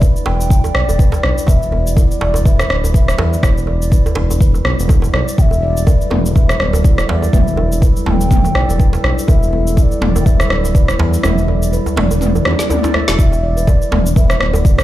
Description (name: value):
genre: afro house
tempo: 123 BPM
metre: 4/4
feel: swing 56% on 16ths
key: E minor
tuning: A4 = 440 Hz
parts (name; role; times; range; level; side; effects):
- dark analog pad; sustained chords; 0.0-14.8 s; F#3 to E5; -24 LUFS; left 1 dB; lush chorus, sidechain pumping
- handpan; arpeggios; 0.0-14.8 s; B3 to E5; -25 LUFS; right 1 dB; sidechain pumping, dub echo
- smooth synth bass; bass; 0.0-14.8 s; D1 to E2; -17 LUFS; equal; sidechain pumping
- deep house drum kit; drums; 0.0-14.8 s; rim click, shaker, snare drum, toms; -19 LUFS; equal; none
- electronic kick drum; drums; 0.0-14.8 s; none; -12 LUFS; equal; none
- djembe; percussion; 0.0-14.8 s; none; -22 LUFS; right 1 dB; none
- mellow hollow bass bansuri; melody; 0.3-14.8 s; D5 to A5; -24 LUFS; equal; dub echo
room: digital ambience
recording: played on a big sound system in a bare room, large studio reverb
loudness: -11 LUFS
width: side -14 dB against mid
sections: 0.0-14.8 A section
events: kick drops out 11.2-13.2; drum fill 12.5-13.2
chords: 0.0 Em9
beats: 0.02 0.50 0.99 | 1.48 1.97 2.46 2.94 | 3.43 3.92 4.41 4.89 | 5.38 5.87 6.36 6.84 | 7.33 7.82 8.31 8.80 | 9.28 9.77 10.26 10.75 | 11.23 11.72 12.21 12.70 | 13.19 13.67 14.16 14.65